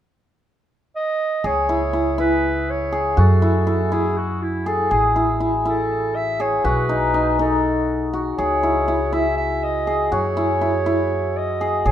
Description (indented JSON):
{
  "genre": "contemporary instrumental, chamber music in an uneven meter",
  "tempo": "242 BPM (eighths)",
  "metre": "7/8",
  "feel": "straight",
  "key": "C# minor",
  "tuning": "A4 = 440 Hz",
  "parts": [
    { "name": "mellow clarinet", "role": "melody", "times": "1.0-11.9 s", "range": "E4 to E5", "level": "-24 LUFS", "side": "right 2 dB", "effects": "none" },
    { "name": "cimbalom", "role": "arpeggios", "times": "1.4-11.9 s", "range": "D#4 to G#4", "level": "-20 LUFS", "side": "left 1 dB", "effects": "none" },
    { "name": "upright bass", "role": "bass", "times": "1.4-11.9 s", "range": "A1 to F#2", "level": "-23 LUFS", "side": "equal", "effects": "none" }
  ],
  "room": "moderate recital hall reverb, RT60 1.3 s",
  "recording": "none",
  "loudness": "-18 LUFS",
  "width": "side -10 dB against mid",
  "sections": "0.0-1.4 A section; 1.4-11.9 B section",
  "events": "none",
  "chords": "0.0 N.C.; 1.4 C#m; 3.2 F#m7; 4.9 A5; 6.6 B7; 8.4 C#m; 10.1 F#5"
}